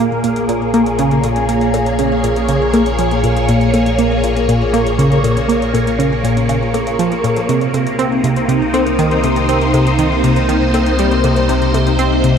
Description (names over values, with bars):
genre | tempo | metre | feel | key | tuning
ambient, sequencer-driven space music | 120 BPM | 4/4 | straight | Bb minor | A4 = 439 Hz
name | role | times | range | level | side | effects
phased string machine | sustained chords | 0.0-12.4 s | Bb2 to F5 | -15 LUFS | equal | ensemble chorus, phaser, shimmer reverb
tight sequenced synth | riff | 0.0-12.4 s | Bb2 to C4 | -16 LUFS | equal | chorus, ping-pong delay
round analog bass | bass | 0.0-12.4 s | Bb1 to C2 | -21 LUFS | equal | none
electronic hi-hat and bongos | percussion | 0.2-12.3 s | none | -28 LUFS | equal | ping-pong delay
room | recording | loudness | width
wet huge ambient reverb, RT60 8.3 s | none | -12 LUFS | side -7 dB against mid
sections
0.0-12.4 A section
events
none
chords
0.0 Bbm7; 7.5 Cm7